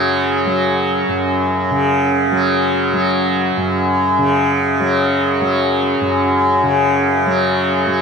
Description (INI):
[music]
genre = world meditative, free-time meditation music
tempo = free time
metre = none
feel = none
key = unclear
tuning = A4 = 440 Hz
[part]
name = tanpura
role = solo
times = 0.0-8.0 s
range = Gb2 to Gb3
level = -14 LUFS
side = equal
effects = tape echo
[sound]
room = wet huge ambient reverb, RT60 8.1 s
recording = dreamy mix soaked in reverb, cassette tape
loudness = -14 LUFS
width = side -5 dB against mid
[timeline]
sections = 0.0-8.0 A section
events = none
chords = none